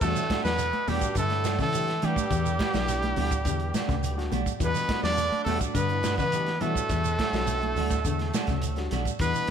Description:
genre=afrobeat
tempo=104 BPM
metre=4/4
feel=straight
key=E minor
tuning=A4 = 436 Hz
part: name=clear trumpet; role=melody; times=0.0-9.5 s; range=G4 to D5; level=-29 LUFS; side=right 1 dB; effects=tape echo
part: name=clear trombone section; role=second line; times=0.0-9.5 s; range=G2 to D3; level=-40 LUFS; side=left 2 dB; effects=none
part: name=growling tenor saxophone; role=second line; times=0.0-9.5 s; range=G3 to D4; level=-36 LUFS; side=right 6 dB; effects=none
part: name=overdriven reed electric piano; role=accompaniment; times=0.0-9.5 s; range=G3 to G5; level=-38 LUFS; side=left 4 dB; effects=none
part: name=semi-hollow electric guitar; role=arpeggios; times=0.0-9.5 s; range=B2 to F#3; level=-34 LUFS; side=left 9 dB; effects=none
part: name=semi-hollow electric guitar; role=stabs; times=0.0-9.1 s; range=G3 to F#4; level=-35 LUFS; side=right 9 dB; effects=spring reverb
part: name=round analog bass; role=bass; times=0.0-9.5 s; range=B1 to E3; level=-31 LUFS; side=equal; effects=none
part: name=crunchy breakbeat drum kit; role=drums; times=0.0-9.5 s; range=crash cymbal, hi-hat, kick drum, snare drum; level=-32 LUFS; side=equal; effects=none
part: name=shekere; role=percussion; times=0.0-9.5 s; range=none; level=-38 LUFS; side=right 11 dB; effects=none
part: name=congas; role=percussion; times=0.3-9.1 s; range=none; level=-36 LUFS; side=right 2 dB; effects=none
part: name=claves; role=percussion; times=9.2-9.4 s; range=none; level=-44 LUFS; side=left 6 dB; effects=none
room=light reverb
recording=none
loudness=-24 LUFS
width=side -8 dB against mid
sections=0.0-9.5 A section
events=reed electric piano fill 3.5-4.6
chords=0.0 Em11

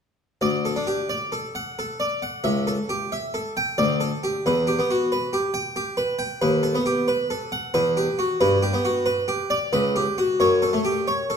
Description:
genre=classical, baroque-style suite movement for harpsichord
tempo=90 BPM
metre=3/4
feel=rubato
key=D major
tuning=A4 = 440 Hz
part: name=harpsichord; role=solo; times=0.4-11.4 s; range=C#2 to G5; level=-21 LUFS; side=equal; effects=none
room=moderate recital hall reverb, RT60 1.8 s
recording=minimal, uncompressed stereo recording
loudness=-21 LUFS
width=side -7 dB against mid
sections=0.4-11.4 A section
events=none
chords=0.4 D; 2.4 A7/C#; 3.8 D5; 4.4 Em; 6.4 B7/D#; 7.7 Em; 8.4 G; 9.7 Gmaj7#11/C#; 10.4 F#m

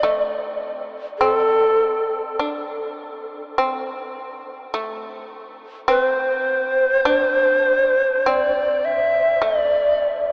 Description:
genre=japanese traditional, Japanese chamber music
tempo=51 BPM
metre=4/4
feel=rubato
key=unclear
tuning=A4 = 441 Hz
part: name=breathy bright long shakuhachi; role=melody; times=0.0-10.3 s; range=A4 to E5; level=-21 LUFS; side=equal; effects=none
part: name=shamisen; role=second line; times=0.0-10.3 s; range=A3 to D4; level=-28 LUFS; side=equal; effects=none
room=wet huge ambient reverb, RT60 7.1 s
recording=in a vast, echoing space, AM radio sound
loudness=-20 LUFS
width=mono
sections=0.0-10.3 A section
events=none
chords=none

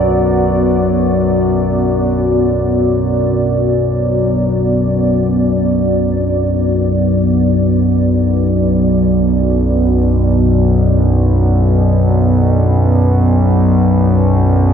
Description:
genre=dark ambient drone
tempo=free time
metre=none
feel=none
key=B minor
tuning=A4 = 439 Hz
part: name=deep dark ambient pad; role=sustained chords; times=0.0-14.7 s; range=B3 to D5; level=-16 LUFS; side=right 1 dB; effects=chorus, built-in reverb
part: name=analog drone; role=drone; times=0.0-14.7 s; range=B1 to F#2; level=-12 LUFS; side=left 1 dB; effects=chorus
part: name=bronze singing bowl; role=texture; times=0.0-14.7 s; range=none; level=barely audible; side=none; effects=none
room=wet cathedral reverb, RT60 6.1 s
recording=dreamy mix soaked in reverb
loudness=-11 LUFS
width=side -8 dB against mid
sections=0.0-2.2 A section; 2.2-14.7 B section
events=none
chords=0.0 Bm

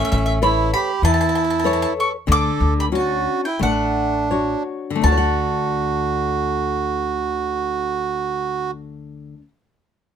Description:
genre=italian folk, Italian serenade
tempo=81-99 BPM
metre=4/4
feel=straight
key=D major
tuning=A4 = 440 Hz
part: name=mandolin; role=melody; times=0.0-9.4 s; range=E5 to D6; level=-22 LUFS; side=left 1 dB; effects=none
part: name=accordion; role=second line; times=0.0-8.7 s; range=C#4 to A4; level=-22 LUFS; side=right 7 dB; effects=none
part: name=nylon-string guitar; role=accompaniment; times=0.0-9.5 s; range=D3 to F#5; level=-24 LUFS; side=left 6 dB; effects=none
part: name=upright bass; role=bass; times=0.1-9.4 s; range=A1 to E2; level=-23 LUFS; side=equal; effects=none
room=little or no reverb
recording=close, detailed microphones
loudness=-18 LUFS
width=side -8 dB against mid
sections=0.0-5.0 A section; 5.0-7.9 B section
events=slowing down 0.0-5.0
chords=0.0 Aadd9; 2.3 Dmaj7; 5.0 D

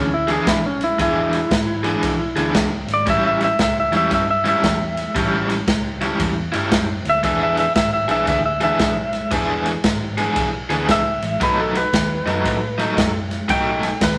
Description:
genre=electric blues shuffle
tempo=115 BPM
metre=4/4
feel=swing 64% on 8ths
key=E mixolydian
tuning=A4 = 443 Hz
part: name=clean lap steel guitar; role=melody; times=0.0-14.2 s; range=C#4 to G5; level=-22 LUFS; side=equal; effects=none
part: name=overdriven electric guitar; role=riff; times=0.0-13.9 s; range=A2 to G#4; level=-24 LUFS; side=equal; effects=tremolo
part: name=vintage muted fingered electric bass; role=bass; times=0.0-14.2 s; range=E1 to A2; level=-31 LUFS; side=equal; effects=none
part: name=swinging big-band drum kit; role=drums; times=0.3-14.2 s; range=kick drum, ride cymbal, snare drum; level=-25 LUFS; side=equal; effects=none
room=moderate studio reverb, RT60 0.6 s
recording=none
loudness=-19 LUFS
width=mono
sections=0.0-14.2 A section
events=electric slide guitar solo 0.0-14.2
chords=0.0 E7; 3.1 A7; 7.2 E7; 11.4 B7

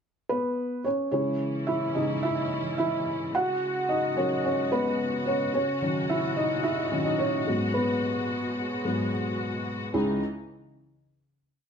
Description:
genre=piano-driven pop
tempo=109 BPM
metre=4/4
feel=straight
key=C# dorian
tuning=A4 = 439 Hz
part: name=felt-muted upright piano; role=accompaniment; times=0.3-10.2 s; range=C#2 to F#5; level=-26 LUFS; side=equal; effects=none
part: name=warm studio string section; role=sustained chords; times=1.1-10.2 s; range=B2 to F#4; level=-33 LUFS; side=left 1 dB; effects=none
room=moderate large studio reverb, RT60 1.0 s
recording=none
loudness=-25 LUFS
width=side -7 dB against mid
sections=0.0-1.1 pickup bar; 1.1-9.9 verse; 9.9-11.7 final chord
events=felt piano solo 1.1-9.9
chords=0.0 Bsus2; 1.1 C#madd9; 3.3 F#add9; 5.5 D#m7; 7.5 G#m7; 9.9 C#madd9

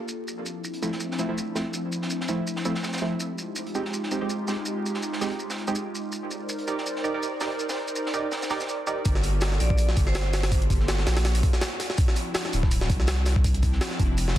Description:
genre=drum and bass, jungle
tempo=164 BPM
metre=4/4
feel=swing 55% on 16ths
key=G minor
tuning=A4 = 439 Hz
part: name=airy breathy pad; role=sustained chords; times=0.0-14.3 s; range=F3 to D5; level=-32 LUFS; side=equal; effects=chorus
part: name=crunchy breakbeat drum kit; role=drums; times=0.1-14.4 s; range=hi-hat, shaker, snare drum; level=-35 LUFS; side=right 1 dB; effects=high-pass filter on hats, high-pass filter on snare, high-pass filter on perc, high-pass filter on room
part: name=band-passed chord stab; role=stabs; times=0.8-9.0 s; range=F3 to D5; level=-31 LUFS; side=right 2 dB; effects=chorus, dub echo
part: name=saturated sub bass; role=bass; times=9.1-14.4 s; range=D1 to C2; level=-24 LUFS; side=equal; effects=none
part: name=jungle sampler-style drum kit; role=drums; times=9.1-14.4 s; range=hi-hat, kick drum, snare drum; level=-24 LUFS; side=equal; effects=none
part: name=vibraphone with hard mallets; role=melody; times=9.6-10.6 s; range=C5 to D5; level=-37 LUFS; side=right 1 dB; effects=dub echo
room=light reverb, studio reverb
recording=dense, heavily limited modern master, vinyl crackle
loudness=-24 LUFS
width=side -13 dB against mid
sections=0.0-9.1 A section; 9.1-14.4 B section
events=filter sweep on analog synth pad 0.0-9.1; filter sweep on synth stab 0.0-9.1; drop 9.1-14.4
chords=0.3 Dm9; 3.2 Fm9; 6.1 Cm9; 9.1 Gm9; 12.0 Dm9

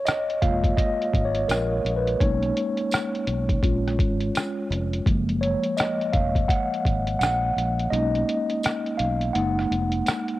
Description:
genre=lo-fi hip hop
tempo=84 BPM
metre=4/4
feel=swing 60% on 16ths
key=F# major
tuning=A4 = 440 Hz
part: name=mellow tine electric piano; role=accompaniment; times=0.0-10.4 s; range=E#3 to F#5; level=-24 LUFS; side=equal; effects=medium stereo tremolo, cassette tape, low-pass filter
part: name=lo-fi sampler-style drum kit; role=drums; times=0.1-10.4 s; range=hi-hat, kick drum, rim click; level=-25 LUFS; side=equal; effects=cassette tape
part: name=tambourine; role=percussion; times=0.1-10.3 s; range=none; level=-39 LUFS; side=right 5 dB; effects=none
part: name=fingered electric bass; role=bass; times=0.4-10.0 s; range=E#1 to B1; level=-27 LUFS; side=equal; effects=tube saturation
room=light reverb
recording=home recording on cassette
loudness=-21 LUFS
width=side -16 dB against mid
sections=0.0-10.4 A section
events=tine electric piano solo 0.0-10.4; kick muted 7.9-10.4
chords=0.0 F#maj9 (rootless); 2.2 Bmaj13; 3.6 A#m7; 5.1 F#maj9; 7.9 Bmaj13; 9.3 F#69

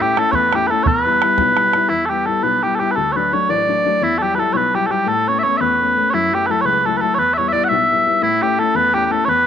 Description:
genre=celtic folk, Celtic jig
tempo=114 BPM (dotted quarters)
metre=6/8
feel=straight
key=E dorian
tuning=A4 = 441 Hz
part: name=mellow small bagpipes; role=melody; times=0.0-9.5 s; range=E4 to F#5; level=-15 LUFS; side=right 2 dB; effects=none
part: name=dark upright piano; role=accompaniment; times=0.0-9.5 s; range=A1 to E4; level=-21 LUFS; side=left 11 dB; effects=none
part: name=bodhran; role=percussion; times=0.2-1.8 s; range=none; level=-22 LUFS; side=right 7 dB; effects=none
room=wet spring reverb, RT60 1.6 s, studio reverb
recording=1960s-style stereo with parts hard left and right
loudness=-14 LUFS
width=side -8 dB against mid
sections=0.0-1.9 A section; 1.9-9.5 A section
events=none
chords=0.0 A; 0.9 Em; 3.0 D; 4.0 Emadd9; 5.1 Aadd9; 6.1 F#m7; 7.2 Em; 8.2 A

